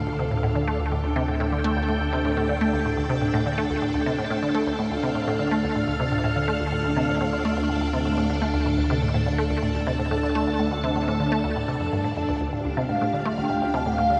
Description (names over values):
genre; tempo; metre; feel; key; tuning
ambient, sequencer-driven space music; 124 BPM; 4/4; straight; D minor; A4 = 441 Hz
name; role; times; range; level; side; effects
string machine, full ensemble; sustained chords; 0.0-14.2 s; D4 to A5; -28 LUFS; equal; ensemble chorus
fat analog bass; bass; 0.0-14.2 s; D2; -32 LUFS; equal; none
resonant blip pluck; riff; 0.1-14.2 s; D2 to A3; -28 LUFS; equal; phaser, analog chorus, tape echo
expressive synth lead; melody; 12.9-14.2 s; F5 to A5; -27 LUFS; equal; lush chorus, tape echo
room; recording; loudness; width
wet huge ambient reverb, RT60 8.5 s; none; -24 LUFS; mono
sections
0.0-14.2 A section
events
none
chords
0.0 Dm